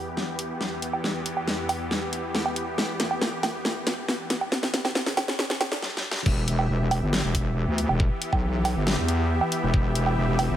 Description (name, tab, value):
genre	heavy wobble dubstep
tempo	138 BPM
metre	4/4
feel	half-time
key	E minor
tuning	A4 = 440 Hz
part	supersaw chords	sustained chords	0.0-10.6 s	E2 to E5	-30 LUFS	equal	sidechain pumping
part	dubstep drum kit	drums	0.2-10.5 s	crash cymbal, hi-hat, snare drum, woodblock	-26 LUFS	right 1 dB	none
part	wobble bass	bass	6.3-10.6 s	E1 to E2	-24 LUFS	equal	chorus, overdrive
part	electronic kick drum	drums	6.3-9.8 s	none	-24 LUFS	equal	none
room	light reverb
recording	high-pass filter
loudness	-23 LUFS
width	side -11 dB against mid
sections	0.0-6.3 A section; 6.3-10.6 B section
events	build-up 0.0-6.3; drum fill 0.0-5.8, 5.8-6.3; stop 5.8-6.3; drop 6.3-10.6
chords	0.0 Em